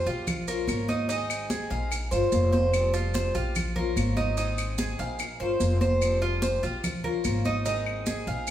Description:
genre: latin, Cuban son and guajira.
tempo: 146 BPM.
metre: 4/4.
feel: straight.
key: unclear.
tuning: A4 = 440 Hz.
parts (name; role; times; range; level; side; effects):
picked acoustic archtop guitar; accompaniment; 0.0-8.5 s; Eb3 to C5; -34 LUFS; left 7 dB; none.
Cuban tres; arpeggios; 0.0-8.5 s; Eb4 to F5; -29 LUFS; right 3 dB; none.
upright bass; bass; 0.1-8.5 s; F1 to Bb1; -29 LUFS; equal; none.
congas; percussion; 0.1-8.5 s; none; -32 LUFS; equal; none.
maracas; percussion; 0.1-8.5 s; none; -39 LUFS; right 5 dB; none.
claves; percussion; 0.3-8.5 s; none; -37 LUFS; left 5 dB; none.
room: wet large studio reverb, RT60 1.2 s.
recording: band playing live in one room.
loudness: -24 LUFS.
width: side -11 dB against mid.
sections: 0.0-8.5 A section.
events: none.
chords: 0.3 Bbmadd9; 1.1 Ab; 1.9 Bbmadd9; 2.7 Fsus2; 3.6 Bbmadd9; 4.4 Ab; 5.2 Bbmadd9; 6.0 Fsus2; 6.8 Bbmadd9; 7.7 Ab.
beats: 0.28 0.69 | 1.09 1.50 1.92 2.33 | 2.73 3.15 3.56 3.97 | 4.38 4.79 5.20 5.61 | 6.02 6.43 6.83 7.25 | 7.66 8.06 8.47.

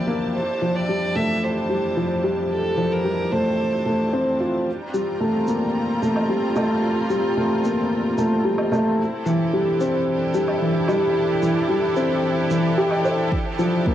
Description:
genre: piano and strings electronica.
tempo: 111 BPM.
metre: 4/4.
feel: straight.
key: G dorian.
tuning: A4 = 444 Hz.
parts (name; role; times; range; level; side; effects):
warm violin; melody; 0.0-4.4 s; A4 to E5; -26 LUFS; right 1 dB; analog delay.
rich symphonic string section; sustained chords; 0.0-13.9 s; D2 to Bb5; -27 LUFS; right 1 dB; sidechain pumping, plate reverb.
dark baby grand piano; riff; 0.0-13.9 s; E3 to C5; -20 LUFS; equal; analog delay.
shaker and woodblock; drums; 0.1-13.7 s; none; -31 LUFS; right 2 dB; low-pass filter on perc, cassette tape, low-pass filter on room.
warm sub bass; bass; 4.7-13.9 s; none; barely audible; none; none.
electronic kick drum; drums; 13.3-13.9 s; none; -24 LUFS; right 1 dB; overdrive, cassette tape.
room: wet studio reverb, RT60 0.6 s.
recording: home recording on cassette.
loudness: -19 LUFS.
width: side -11 dB against mid.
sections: 0.0-4.7 A section; 4.7-13.9 B section.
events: filter sweep on grand piano 0.0-4.7; build-up 4.7-13.9.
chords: 0.3 Fadd9; 4.7 Gmadd9; 9.0 Cadd9; 13.3 Bb/D.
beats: | 0.35 0.89 1.43 1.97 | 2.51 3.05 3.59 4.13 | 4.67 5.21 5.75 6.29 | 6.84 7.38 7.92 8.46 | 9.00 9.54 10.08 10.62 | 11.16 11.70 12.24 12.78 | 13.32 13.86.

